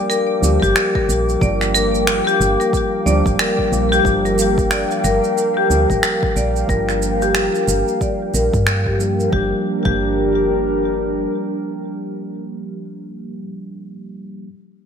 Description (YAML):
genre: organic downtempo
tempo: 91 BPM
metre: 4/4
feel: swing 60% on 16ths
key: G minor pentatonic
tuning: A4 = 438 Hz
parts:
  - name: tine electric piano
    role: accompaniment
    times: 0.0-14.5 s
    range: F3 to Bb4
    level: -23 LUFS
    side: right 1 dB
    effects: phaser, sidechain pumping, low-pass filter, ping-pong delay
  - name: warbly tape-like pad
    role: sustained chords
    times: 0.0-12.7 s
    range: G3 to D6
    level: -22 LUFS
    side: equal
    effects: chorus, built-in reverb, sidechain pumping
  - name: marimba with hard mallets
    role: arpeggios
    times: 0.0-10.0 s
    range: G4 to D5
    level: -20 LUFS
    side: left 3 dB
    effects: low-pass filter, ping-pong delay
  - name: electronic shaker and finger snaps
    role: drums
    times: 0.1-9.3 s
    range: none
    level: -22 LUFS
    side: right 1 dB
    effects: gated reverb
  - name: woody FM bass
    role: bass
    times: 0.4-11.3 s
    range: G1 to G2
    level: -21 LUFS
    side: equal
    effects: tube saturation
  - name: electronic kick drum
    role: drums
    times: 0.6-10.0 s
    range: none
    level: -22 LUFS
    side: equal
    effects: none
room: wet plate reverb, RT60 1.7 s, digital ambience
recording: bright 1980s-style digital production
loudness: -15 LUFS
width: side -7 dB against mid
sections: 0.0-9.3 A section; 9.3-12.0 B section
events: filter sweep on marimba 0.0-9.3; filter sweep on tine electric piano 0.0-9.3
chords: 0.0 Gm7